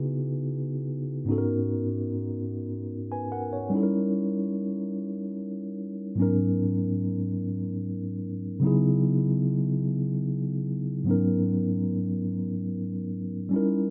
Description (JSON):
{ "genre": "R&B", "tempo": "49 BPM (dotted quarters)", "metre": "6/8", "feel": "straight", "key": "G# minor", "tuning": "A4 = 440 Hz", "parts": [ { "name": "mellow tine electric piano", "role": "solo", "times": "0.0-13.9 s", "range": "G#2 to G#5", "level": "-28 LUFS", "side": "equal", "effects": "none" } ], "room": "moderate studio reverb, RT60 0.6 s", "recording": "rough home demo mix", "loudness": "-28 LUFS", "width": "mono", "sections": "0.0-11.1 A section; 11.1-13.9 A section", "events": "none", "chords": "0.0 C#m11; 1.3 G#m11; 3.7 D#7b9; 6.2 G#m11; 8.6 C#m11; 11.1 G#m11" }